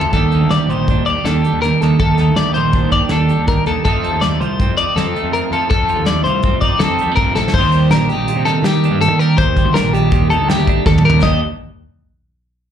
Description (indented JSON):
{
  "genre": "math rock and midwest emo",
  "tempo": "162 BPM",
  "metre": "5/4",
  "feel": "straight",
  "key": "Eb lydian",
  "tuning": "A4 = 440 Hz",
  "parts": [
    { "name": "twelve-string electric guitar", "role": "accompaniment", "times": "0.0-11.4 s", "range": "Eb2 to G4", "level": "-18 LUFS", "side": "right 9 dB", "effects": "none" },
    { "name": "twelve-string electric guitar", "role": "arpeggios", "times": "0.0-11.4 s", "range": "G4 to Eb5", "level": "-18 LUFS", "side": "left 5 dB", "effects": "slapback echo" },
    { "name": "fuzz picked electric bass", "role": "bass", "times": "0.0-11.4 s", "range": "Bb1 to Eb3", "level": "-18 LUFS", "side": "left 1 dB", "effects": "overdrive" },
    { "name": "soft brush drum kit", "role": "drums", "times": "0.0-11.3 s", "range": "crash cymbal, hi-hat, kick drum, snare drum, toms", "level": "-19 LUFS", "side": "left 1 dB", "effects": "none" }
  ],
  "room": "little or no reverb",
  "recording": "live gig heard through the venue's PA, club reverb",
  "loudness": "-12 LUFS",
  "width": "side -9 dB against mid",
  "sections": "0.0-7.6 A section; 7.6-11.2 B section; 11.2-12.7 C section",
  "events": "drum fill 7.4, 10.9-11.2",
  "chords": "0.1 Ebmaj7; 3.9 F7; 7.6 Ebmaj7; 11.2 Eb",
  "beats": "| 0.14 0.51 0.88 1.25 1.63 | 2.00 2.37 2.74 3.11 3.48 | 3.85 4.22 4.59 4.96 5.33 | 5.70 6.07 6.44 6.81 7.18 | 7.55 7.92 8.29 8.66 9.03 | 9.39 9.76 10.13 10.50 10.87 | 11.23"
}